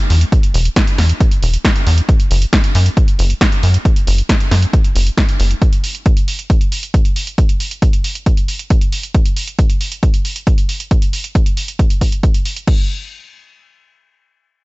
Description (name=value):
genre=uplifting trance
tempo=136 BPM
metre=4/4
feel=straight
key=unclear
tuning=A4 = 439 Hz
part: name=tight sequencer bass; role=bass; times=0.1-5.5 s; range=E1 to F#2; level=-12 LUFS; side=equal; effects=sidechain pumping
part: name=punchy analog drum machine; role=drums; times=0.1-12.8 s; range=crash cymbal, hi-hat, snare drum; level=-21 LUFS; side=right 1 dB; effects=sidechain pumping on hats, sidechain pumping on cymbals, sidechain pumping on perc
part: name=electronic kick drum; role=drums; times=0.3-12.8 s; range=none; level=-13 LUFS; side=equal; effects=none
room=little or no reverb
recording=dark, warm production, nothing above 7.9 kHz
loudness=-12 LUFS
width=side -23 dB against mid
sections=0.0-12.7 A section; 12.7-14.6 B section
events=none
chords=none